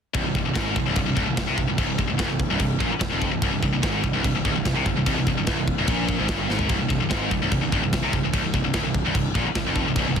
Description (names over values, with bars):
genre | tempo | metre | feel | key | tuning
heavy metal | 147 BPM | 4/4 | straight | unclear | A4 = 438 Hz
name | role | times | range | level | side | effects
heavy high-gain guitar | riff | 0.1-10.2 s | C2 to C3 | -26 LUFS | left 11 dB | distortion
fuzz picked electric bass | bass | 0.1-10.2 s | C1 to C2 | -28 LUFS | equal | overdrive
tight metal drum kit | drums | 0.1-10.2 s | crash cymbal, kick drum, snare drum, toms | -25 LUFS | equal | none
scooped high-gain guitar | riff | 0.2-10.2 s | C2 to C3 | -27 LUFS | right 12 dB | distortion
room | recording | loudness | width
small room ambience | dense, heavily limited modern master | -21 LUFS | side -7 dB against mid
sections
0.2-10.2 A section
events
drum fill 6.5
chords
0.2 C5